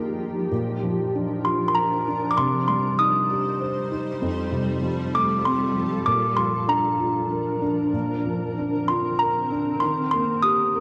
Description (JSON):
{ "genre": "children's music, lullaby", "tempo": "97 BPM", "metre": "3/4", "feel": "rubato", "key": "unclear", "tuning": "A4 = 439 Hz", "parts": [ { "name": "felt-muted upright piano", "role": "accompaniment", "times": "0.0-10.8 s", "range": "F2 to C5", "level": "-28 LUFS", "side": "equal", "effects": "none" }, { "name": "shimmering ambient pad", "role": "sustained chords", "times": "0.0-10.8 s", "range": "D3 to G5", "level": "-31 LUFS", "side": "equal", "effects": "chorus, built-in reverb" }, { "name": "music box", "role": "melody", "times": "1.4-10.8 s", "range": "Bb5 to Eb6", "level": "-25 LUFS", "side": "equal", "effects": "none" } ], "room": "moderate echo chamber reverb, RT60 1.4 s, small room ambience", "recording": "none", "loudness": "-23 LUFS", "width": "mono", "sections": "0.5-10.8 A section", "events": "none", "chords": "0.0 Ebadd9; 0.5 Bb; 2.4 Cm; 4.2 Fadd9; 6.1 Bb; 7.9 Bbadd9; 9.8 Eb" }